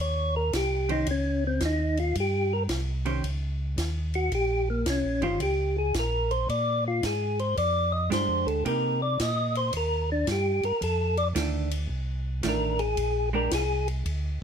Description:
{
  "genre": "soul jazz organ trio",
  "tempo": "111 BPM",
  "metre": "4/4",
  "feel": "swing 67% on 8ths",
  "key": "unclear",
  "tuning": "A4 = 440 Hz",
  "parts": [
    { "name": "percussive tonewheel organ", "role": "melody", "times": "0.0-13.9 s", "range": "Bb3 to Eb5", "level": "-27 LUFS", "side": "left 1 dB", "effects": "slow rotary speaker" },
    { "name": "mellow tonewheel organ", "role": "bass", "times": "0.0-14.4 s", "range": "G1 to C3", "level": "-29 LUFS", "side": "equal", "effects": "slow rotary speaker" },
    { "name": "compact cocktail drum kit", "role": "drums", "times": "0.5-14.2 s", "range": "hi-hat, kick drum, ride cymbal, snare drum", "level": "-36 LUFS", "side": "equal", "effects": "none" },
    { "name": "vintage hollow-body jazz guitar", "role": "accompaniment", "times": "0.9-13.5 s", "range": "Eb3 to C5", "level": "-31 LUFS", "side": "right 6 dB", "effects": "none" }
  ],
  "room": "light reverb",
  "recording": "none",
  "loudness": "-24 LUFS",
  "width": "side -7 dB against mid",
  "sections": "0.0-14.4 A section",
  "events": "tonewheel organ solo 0.0-14.4",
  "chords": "0.0 Eb6; 6.5 Bb6; 8.7 Cm7; 10.8 F6; 13.0 Bb9"
}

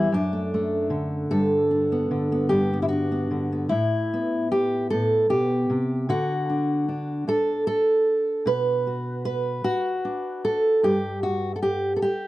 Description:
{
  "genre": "folk, solo fingerstyle acoustic guitar",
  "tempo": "51 BPM (dotted quarters)",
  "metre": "6/8",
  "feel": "rubato",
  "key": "unclear",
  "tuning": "A4 = 441 Hz",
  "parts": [
    { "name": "fingerpicked steel-string acoustic guitar", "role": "solo", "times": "0.0-12.3 s", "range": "E2 to B4", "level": "-21 LUFS", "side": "equal", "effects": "none" }
  ],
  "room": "little or no reverb",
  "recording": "dry, close 1970s-style studio recording",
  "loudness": "-21 LUFS",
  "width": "side -16 dB against mid",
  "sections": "0.0-3.7 A section; 3.7-12.3 B section",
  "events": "none",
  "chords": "0.1 D/F#; 1.3 Gadd9; 3.7 Asus2; 6.1 D; 8.5 Bm; 10.8 N.C."
}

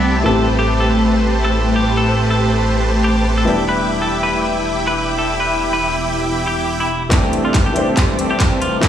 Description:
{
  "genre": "future bass",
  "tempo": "140 BPM",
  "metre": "4/4",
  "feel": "swing 55% on 16ths, half-time",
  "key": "C major",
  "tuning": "A4 = 440 Hz",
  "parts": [
    { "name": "clean electric guitar", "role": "melody", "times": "0.0-8.9 s", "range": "B3 to B4", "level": "-22 LUFS", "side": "left 1 dB", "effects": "sidechain pumping, low-pass filter, dub echo" },
    { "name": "felt-muted upright piano", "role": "accompaniment", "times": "0.0-8.9 s", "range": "E3 to C5", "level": "-22 LUFS", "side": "left 2 dB", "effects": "sidechain pumping" },
    { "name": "ethereal airy pad", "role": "sustained chords", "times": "0.0-8.9 s", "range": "C3 to G4", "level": "-27 LUFS", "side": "equal", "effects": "none" },
    { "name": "dense compressed supersaw", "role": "riff", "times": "0.0-8.9 s", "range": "A3 to D6", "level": "-19 LUFS", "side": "equal", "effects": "sidechain pumping, low-pass filter" },
    { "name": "fat analog bass", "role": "bass", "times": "0.0-8.9 s", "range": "E1 to C2", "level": "-21 LUFS", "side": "equal", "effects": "sidechain pumping, high-pass filter" },
    { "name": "electronic kick drum", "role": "drums", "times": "7.1-8.9 s", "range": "none", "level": "-15 LUFS", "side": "equal", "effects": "studio reverb" },
    { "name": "trap drum kit", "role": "drums", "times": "7.1-8.9 s", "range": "handclaps, hi-hat", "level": "-22 LUFS", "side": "equal", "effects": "high-pass filter on snare, studio reverb, high-pass filter on hats" },
    { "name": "riser", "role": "sound effects", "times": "8.2-8.9 s", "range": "none", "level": "-32 LUFS", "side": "right 1 dB", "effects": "none" }
  ],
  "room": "light reverb, digital ambience",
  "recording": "played on a big sound system in a bare room, stone room reverb, studio reverb",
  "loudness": "-14 LUFS",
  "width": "side -10 dB against mid",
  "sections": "0.0-7.1 A section; 7.1-8.9 B section",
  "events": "filter sweep on supersaw synth 0.0-7.1; build-up 7.1-8.9; drum fill 7.1-8.9",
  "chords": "0.3 Am7; 3.5 Em7; 7.1 C6"
}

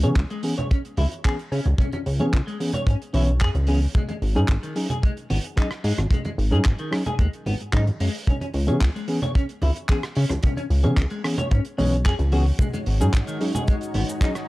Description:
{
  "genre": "nu-disco, nu disco",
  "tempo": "111 BPM",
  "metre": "4/4",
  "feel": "straight",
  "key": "C# minor",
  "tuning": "A4 = 441 Hz",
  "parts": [
    { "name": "mellow reed electric piano", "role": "accompaniment", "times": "0.0-14.3 s", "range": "E3 to C#5", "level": "-27 LUFS", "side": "equal", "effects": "fast tremolo, sidechain pumping, low-pass filter, analog delay" },
    { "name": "clean electric guitar", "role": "riff", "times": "0.0-14.3 s", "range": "D#3 to C#5", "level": "-32 LUFS", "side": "left 2 dB", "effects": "wide subtle chorus, analog delay" },
    { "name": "chorused synth bass", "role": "bass", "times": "0.0-14.0 s", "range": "G#1 to C#3", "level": "-21 LUFS", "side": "equal", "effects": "sidechain pumping" },
    { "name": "damped 70s drum kit", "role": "drums", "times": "0.0-14.5 s", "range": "cabasa, handclaps, hi-hat, rim click", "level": "-34 LUFS", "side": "right 1 dB", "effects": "none" },
    { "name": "kick drum", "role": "drums", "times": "0.2-14.3 s", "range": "none", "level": "-20 LUFS", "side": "equal", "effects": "none" },
    { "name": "congas", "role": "percussion", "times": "0.6-14.1 s", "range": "none", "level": "-31 LUFS", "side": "right 1 dB", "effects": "none" },
    { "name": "string machine, full ensemble", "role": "sustained chords", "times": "12.6-14.5 s", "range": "G#3 to C#5", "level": "-31 LUFS", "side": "equal", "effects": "ensemble chorus, sidechain pumping" }
  ],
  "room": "small room ambience",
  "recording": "dry, gritty hardware recording, cassette tape",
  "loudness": "-20 LUFS",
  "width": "side -19 dB against mid",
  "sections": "0.0-14.5 A section",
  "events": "filter sweep on reed electric piano 0.0-14.5",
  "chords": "0.0 C#m7; 3.9 G#7sus4; 8.3 C#m7; 12.6 G#7sus4"
}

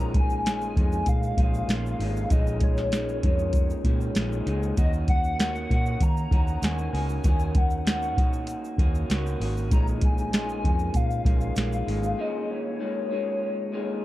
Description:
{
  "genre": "indie pop, bedroom pop",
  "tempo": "97 BPM",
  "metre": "4/4",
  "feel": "straight",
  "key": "unclear",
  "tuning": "A4 = 441 Hz",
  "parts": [
    { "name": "hollow clarinet-like synth lead", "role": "melody", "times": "0.0-14.0 s", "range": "Db5 to Bb5", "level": "-32 LUFS", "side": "left 2 dB", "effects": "phaser, ensemble chorus" },
    { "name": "electric guitar through a small old amp", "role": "accompaniment", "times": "0.0-14.0 s", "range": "Bb2 to Gb4", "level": "-31 LUFS", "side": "equal", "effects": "wide subtle chorus, vibrato effect" },
    { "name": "vintage muted fingered electric bass", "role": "bass", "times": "0.0-12.1 s", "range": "Ab1 to Eb3", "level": "-29 LUFS", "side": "equal", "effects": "none" },
    { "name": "soft vintage rhythm box", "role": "drums", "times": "0.1-12.0 s", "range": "hi-hat, kick drum, snare drum", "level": "-24 LUFS", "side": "equal", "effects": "none" },
    { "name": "egg shaker", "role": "percussion", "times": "0.3-12.2 s", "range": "none", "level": "-52 LUFS", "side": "right 5 dB", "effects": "none" }
  ],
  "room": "light reverb, digital ambience",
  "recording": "dark, warm production",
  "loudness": "-23 LUFS",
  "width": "side -16 dB against mid",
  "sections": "0.0-14.0 A section",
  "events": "break 12.2-14.0",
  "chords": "0.0 Bbm7; 4.8 Ebm7; 9.7 Bbm7"
}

